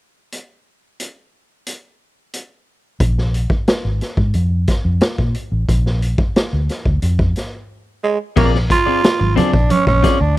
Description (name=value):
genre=funk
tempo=90 BPM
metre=4/4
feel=straight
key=Bb mixolydian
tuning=A4 = 440 Hz
part: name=raw garage drum kit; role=drums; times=0.3-10.2 s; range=crash cymbal, hi-hat, kick drum, snare drum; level=-18 LUFS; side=equal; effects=none
part: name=vintage muted fingered electric bass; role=bass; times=3.0-10.4 s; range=Ab1 to Bb2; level=-17 LUFS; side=equal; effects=none
part: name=growling tenor saxophone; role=melody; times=8.0-10.4 s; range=Ab3 to F4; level=-17 LUFS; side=right 4 dB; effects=none
part: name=clean electric guitar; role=accompaniment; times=8.4-10.4 s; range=C4 to D5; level=-20 LUFS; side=left 10 dB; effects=none
part: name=congas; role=percussion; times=8.4-10.2 s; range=none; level=-21 LUFS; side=right 4 dB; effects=none
room=small room ambience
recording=dry, close 1970s-style studio recording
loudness=-14 LUFS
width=side -16 dB against mid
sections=0.3-3.0 A section; 3.0-8.4 B section; 8.4-10.4 C section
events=break 7.7-8.4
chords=0.3 N.C.; 3.0 Bb5; 8.4 Bb9